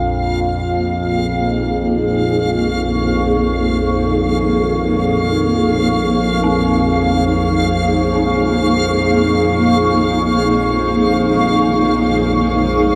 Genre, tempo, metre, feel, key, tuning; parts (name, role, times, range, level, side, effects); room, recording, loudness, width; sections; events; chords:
dark ambient drone; free time; Bb minor; A4 = 443 Hz
overtone-sweeping drone; drone; 0.0-13.0 s; Bb1 to F2; -20 LUFS; equal; chorus, built-in reverb
backwards swelling texture; texture; 0.0-13.0 s; F5; -25 LUFS; equal; built-in reverb, shimmer reverb
granular cloud pad; sustained chords; 0.4-13.0 s; Bb3 to Db6; -18 LUFS; equal; built-in reverb, shimmer reverb
dark detuned synth bell; arpeggios; 6.4-13.0 s; C4; -28 LUFS; equal
wet lush hall reverb, RT60 2.9 s; dreamy mix soaked in reverb; -16 LUFS; mono
0.0-13.0 A section
0.0 Bbmadd9